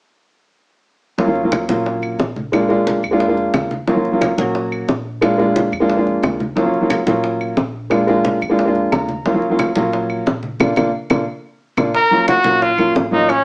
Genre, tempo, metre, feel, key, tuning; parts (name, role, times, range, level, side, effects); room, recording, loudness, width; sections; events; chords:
Afro-Cuban jazz; 178 BPM; 4/4; straight; A4 = 436 Hz
warm upright piano; accompaniment; 1.2-13.3 s; Gb3 to Bb5; -16 LUFS; equal
upright bass; bass; 1.2-13.4 s; A1 to F2; -31 LUFS; equal
bongos; percussion; 1.2-13.4 s; -20 LUFS; equal
congas; percussion; 1.2-13.4 s; -26 LUFS; equal
claves; percussion; 1.5-13.4 s; -27 LUFS; right 1 dB
breathy bright jazz flute; second line; 11.9-13.4 s; C#5 to Bb5; -19 LUFS; equal
clear trumpet; melody; 12.0-13.4 s; C#4 to Bb4; -14 LUFS; equal; slapback echo
moderate studio reverb, RT60 0.7 s; small speaker sound; -14 LUFS; side -31 dB against mid
1.2-11.9 A section; 11.9-13.4 B section
upright piano fill 8.8-9.3; band accent 10.6-11.9; drum fill 11.1-11.9
1.2 Ebm7; 2.5 Bb7; 3.9 Ebm7; 5.2 Bb7; 6.6 Ebm7; 7.9 Bb7; 9.3 Ebm7; 10.6 Bb; 11.9 Ebm9